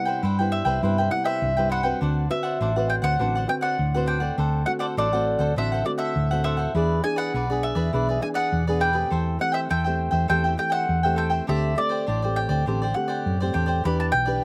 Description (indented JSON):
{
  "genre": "samba",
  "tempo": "101 BPM",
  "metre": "4/4",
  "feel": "straight",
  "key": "unclear",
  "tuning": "A4 = 440 Hz",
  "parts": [
    { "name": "mandolin", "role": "melody", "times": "0.0-14.4 s", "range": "D5 to B5", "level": "-28 LUFS", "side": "equal", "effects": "none" },
    { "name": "nylon-string guitar", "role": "accompaniment", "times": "0.0-14.4 s", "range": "G2 to B4", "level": "-31 LUFS", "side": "equal", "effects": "none" },
    { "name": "cavaquinho", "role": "accompaniment", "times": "0.1-14.4 s", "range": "D4 to G5", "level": "-31 LUFS", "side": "equal", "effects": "none" },
    { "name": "hollow-body short-scale fingered electric bass", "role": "bass", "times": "0.2-14.4 s", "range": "A1 to G2", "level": "-27 LUFS", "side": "equal", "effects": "none" }
  ],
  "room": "little or no reverb",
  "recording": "recorded outdoors, with no room sound",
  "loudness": "-24 LUFS",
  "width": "mono",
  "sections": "0.0-13.9 A section",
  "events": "none",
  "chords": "0.0 Cmaj7; 2.0 D13; 4.4 D7; 6.7 E7; 9.1 Am7/E; 11.5 D7sus4; 13.9 Em7"
}